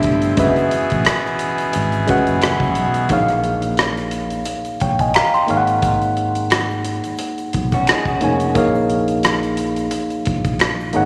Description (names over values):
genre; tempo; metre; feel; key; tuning
R&B, neo-soul; 88 BPM; 4/4; swing 56% on 16ths; unclear; A4 = 440 Hz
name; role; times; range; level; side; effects
tine electric piano; accompaniment; 0.0-11.1 s; G#3 to C6; -21 LUFS; equal; phaser
pipe organ, trumpet; sustained chords; 0.0-3.1 s; B2 to G5; -26 LUFS; equal; none
damped 70s drum kit; drums; 0.0-11.1 s; hi-hat, kick drum, rim click; -24 LUFS; equal; none
sustaining fretless electric bass; bass; 0.1-11.1 s; F1 to B1; -26 LUFS; equal; none
tube shaker and finger snaps; percussion; 0.2-10.9 s; none; -38 LUFS; equal; none
electric guitar through a small old amp; second line; 7.7-8.5 s; Db4 to Ab4; -25 LUFS; equal; none
room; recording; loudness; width
wet church reverb, RT60 2.5 s; none; -18 LUFS; mono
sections
0.0-3.1 A section; 3.1-11.1 B section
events
none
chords
0.4 F#9sus4; 3.1 Bbm7; 5.5 Ab9sus4; 8.6 Bbm7